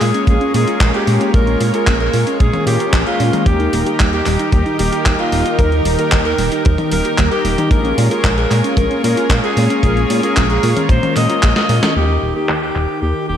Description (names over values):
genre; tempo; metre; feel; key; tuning
italo disco; 113 BPM; 4/4; straight; Bb dorian; A4 = 440 Hz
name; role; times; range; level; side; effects
breathy alto saxophone; melody; 0.0-13.4 s; F4 to Eb5; -20 LUFS; right 1 dB; tape echo
lush unison pad; sustained chords; 0.0-13.4 s; Eb3 to Db5; -22 LUFS; equal; chorus
soft round pluck; arpeggios; 0.0-11.9 s; G3 to Bb4; -22 LUFS; right 1 dB; chorus, ping-pong delay
chorused synth bass; bass; 0.0-13.4 s; Eb1 to Bb2; -18 LUFS; equal; none
gated 80s digital drum machine; drums; 0.0-12.9 s; handclaps, hi-hat, snare drum, toms; -21 LUFS; left 1 dB; gated reverb, gated reverb snare, low-pass filter on hats, studio reverb, low-pass filter on cymbals, low-pass filter on snare, low-pass filter on toms
kick drum; drums; 0.3-11.5 s; none; -15 LUFS; equal; studio reverb
mellow synth brass; stabs; 0.5-13.4 s; Ab3 to Bb4; -25 LUFS; left 3 dB; chorus
room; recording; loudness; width
moderate lush hall reverb, RT60 2.0 s; dreamy mix soaked in reverb; -12 LUFS; side -9 dB against mid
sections
0.0-12.0 A section; 12.0-13.4 B section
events
drum fill 11.6-12.0; filter sweep on analog synth pad 12.0-13.4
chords
0.0 Bbm7; 3.5 Eb; 7.7 Bbm7; 12.0 Eb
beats
0.28 0.81 | 1.34 1.87 2.40 2.93 | 3.46 4.00 4.53 5.06 | 5.59 6.12 6.65 7.18 | 7.71 8.24 8.77 9.30 | 9.84 10.37 10.90 11.43 | 11.96 12.49 13.02